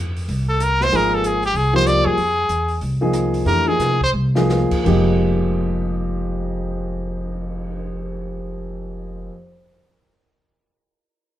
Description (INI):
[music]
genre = modal jazz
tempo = 162-191 BPM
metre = 4/4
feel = swing 62% on 8ths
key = F minor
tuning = A4 = 442 Hz
[part]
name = upright bass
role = bass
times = 0.0-9.3 s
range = F1 to C3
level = -22 LUFS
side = equal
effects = none
[part]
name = open jazz drum kit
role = drums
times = 0.2-7.7 s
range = crash cymbal, cymbal swell, hi-hat, kick drum, rim click, snare drum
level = -31 LUFS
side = equal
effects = none
[part]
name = brilliant trumpet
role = melody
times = 0.5-4.1 s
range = G4 to D5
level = -18 LUFS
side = equal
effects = none
[part]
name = warm grand piano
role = accompaniment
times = 0.9-9.3 s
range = F2 to Ab4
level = -21 LUFS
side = equal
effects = none
[sound]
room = moderate studio reverb, RT60 0.8 s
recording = band playing live in one room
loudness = -17 LUFS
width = side -12 dB against mid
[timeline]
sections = 0.0-4.8 A section; 4.8-7.8 B section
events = trumpet solo 0.0-4.8; slowing down 2.2-4.8; drum fill 4.1-4.5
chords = 0.0 Fm11